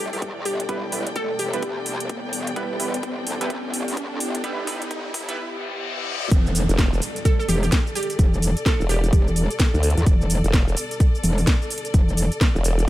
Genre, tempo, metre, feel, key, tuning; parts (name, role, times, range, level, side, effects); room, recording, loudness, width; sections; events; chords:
bass house; 128 BPM; 4/4; swing 62% on 16ths; E minor; A4 = 444 Hz
glassy wavetable pluck; melody; 0.0-2.1, 7.3-9.6 s; G4 to A4; -29 LUFS; right 2 dB; chorus, tape echo
dark analog pad; sustained chords; 0.0-12.9 s; B3 to G4; -36 LUFS; left 2 dB; chorus, sidechain pumping
metallic wobble bass; bass; 0.0-12.3 s; E1 to E2; -25 LUFS; equal; distortion, chorus, overdrive, sidechain pumping, high-pass filter
riser, reverse cymbal and downlifter; sound effects; 0.3-10.1 s; -32 LUFS; equal
warm studio string section; texture; 0.0-12.9 s; A4 to G5; -32 LUFS; left 2 dB; sidechain pumping
garage drum kit; drums; 0.1-12.9 s; hi-hat, shaker, snare drum; -27 LUFS; equal; high-pass filter on hats, small room ambience, high-pass filter on snare, high-pass filter on perc
electronic kick drum; drums; 0.2-12.5 s; -19 LUFS; equal; high-pass filter on kick, small room ambience
band-passed chord stab; stabs; 0.7-5.4 s; G3 to B4; -32 LUFS; right 3 dB; chorus, sidechain pumping, tape echo
formant-sweep wobble bass; bass; 6.7-12.9 s; E1 to D2; -20 LUFS; equal; chorus, overdrive, sidechain pumping
little or no reverb; high-pass filter; -20 LUFS; side -16 dB against mid
0.0-6.3 A section; 6.3-12.9 B section
build-up 0.0-6.3; filter sweep on synth stab 0.0-6.3; filter sweep on analog synth pad 0.0-6.3; riser 0.3-5.4; drum fill 2.6-5.4; reverse cymbal 5.4-6.3; drop 6.3-12.9
0.0 Em